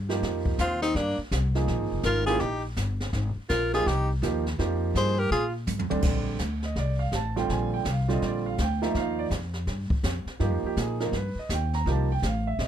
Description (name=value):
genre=jazz, small-group swing and bop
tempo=165 BPM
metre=4/4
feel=swing 64% on 8ths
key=Bb major from 6.0 s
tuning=A4 = 440 Hz
part: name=upright bass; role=bass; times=0.0-12.7 s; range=F1 to Bb2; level=-28 LUFS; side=left 1 dB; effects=none
part: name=clear grand piano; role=accompaniment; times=0.1-12.7 s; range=D3 to Bb5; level=-29 LUFS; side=right 5 dB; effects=none
part: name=jazz brush drum kit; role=drums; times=0.1-12.7 s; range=brushed snare drum, crash cymbal, hi-hat, kick drum, snare drum, toms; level=-32 LUFS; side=equal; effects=none
part: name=breathy tenor saxophone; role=melody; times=0.6-5.5 s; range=D4 to C5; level=-27 LUFS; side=left 2 dB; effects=none
part: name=breathy tenor saxophone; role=second line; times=0.6-5.5 s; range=Bb3 to Ab4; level=-32 LUFS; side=right 3 dB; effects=none
room=little or no reverb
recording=dark, warm production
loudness=-24 LUFS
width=side -10 dB against mid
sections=0.0-6.0 A section; 6.0-12.7 B section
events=drum fill 5.7-6.0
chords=0.2 F9sus4; 1.7 Bbm7; 2.4 Gm; 3.1 Ab6; 4.6 Fsus2; 5.3 Bb9; 6.0 Bbmaj9; 7.5 Bbadd9; 8.9 Ebadd9; 11.9 Cm7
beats=| 0.22 0.58 0.95 1.31 | 1.68 2.04 2.40 2.77 | 3.13 3.49 3.86 4.22 | 4.58 4.95 5.31 5.67 | 6.04 6.40 6.76 7.13 | 7.49 7.86 8.22 8.58 | 8.95 9.31 9.68 10.04 | 10.40 10.77 11.13 11.49 | 11.86 12.22 12.58